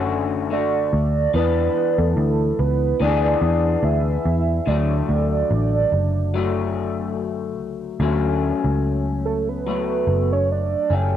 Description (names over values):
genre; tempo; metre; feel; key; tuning
indie pop, bedroom pop; 72 BPM; 4/4; swing 55% on 16ths; D major; A4 = 443 Hz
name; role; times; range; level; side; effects
electric guitar through a small old amp; accompaniment; 0.0-11.2 s; D3 to G#4; -24 LUFS; left 8 dB; lush chorus, vibrato effect, cassette tape
vintage muted picked electric bass; bass; 0.0-11.2 s; F#1 to E2; -22 LUFS; equal; none
warm velvety synth lead; melody; 0.5-11.2 s; A4 to G5; -23 LUFS; right 8 dB; tremolo, wide subtle chorus, cassette tape, tape echo
room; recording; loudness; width
little or no reverb; home recording on cassette; -18 LUFS; side -10 dB against mid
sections
0.0-8.0 A section; 8.0-11.2 B section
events
none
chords
0.0 Dmaj7; 1.3 E7; 4.7 D; 8.0 Dmaj7